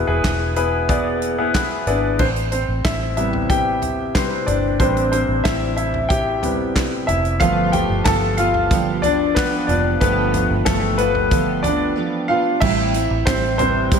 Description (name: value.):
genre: piano-driven pop.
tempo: 92 BPM.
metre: 4/4.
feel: straight.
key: A minor.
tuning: A4 = 439 Hz.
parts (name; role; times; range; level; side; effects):
clear baby grand piano; accompaniment; 0.0-14.0 s; B2 to A5; -19 LUFS; left 2 dB; wide subtle chorus.
vintage muted fingered electric bass; bass; 0.0-14.0 s; E1 to A1; -24 LUFS; equal; none.
natural country drum kit; drums; 0.2-14.0 s; crash cymbal, handclaps, hi-hat, kick drum, snare drum, toms; -23 LUFS; equal; none.
picked steel-string acoustic guitar; riff; 7.4-14.0 s; G2 to G4; -24 LUFS; right 9 dB; analog chorus.
room: moderate lush hall reverb, RT60 1.7 s, studio reverb.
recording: dreamy mix soaked in reverb.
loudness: -16 LUFS.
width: side -6 dB against mid.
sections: 0.0-2.2 A section; 2.2-12.6 B section; 12.6-14.0 C section.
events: grand piano solo 2.2-12.6, 12.6-14.0.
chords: 0.0 E; 2.2 Am7; 7.4 G7; 12.6 Am7.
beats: 0.24 0.89 1.54 | 2.20 2.85 3.50 4.15 | 4.80 5.45 6.10 6.76 | 7.41 8.06 8.71 9.36 | 10.01 10.66 11.31 11.97 | 12.62 13.27 13.92.